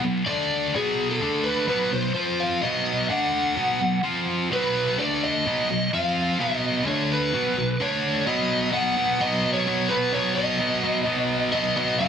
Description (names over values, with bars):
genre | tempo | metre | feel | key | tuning
rock | 128 BPM | 4/4 | straight | B major from 8.3 s | A4 = 440 Hz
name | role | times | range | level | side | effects
high-gain distorted guitar | riff | 0.0-12.1 s | F#2 to F4 | -24 LUFS | equal | distortion
lead guitar through a small cranked amp | melody | 0.3-12.1 s | G#4 to F#5 | -24 LUFS | equal | overdrive
room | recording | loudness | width
moderate large studio reverb, RT60 0.9 s, digital ambience | dense, heavily limited modern master | -21 LUFS | side -8 dB against mid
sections
0.0-8.3 A section; 8.3-12.1 B section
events
none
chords
0.3 D5; 0.7 B5; 1.2 D5; 1.7 B5; 2.2 F5; 2.6 B; 3.1 D5; 3.6 B5; 4.0 F5; 4.5 B5; 5.0 D5; 5.5 B; 5.9 F5; 6.4 B; 6.9 D5; 7.3 B5; 7.8 D5; 8.3 B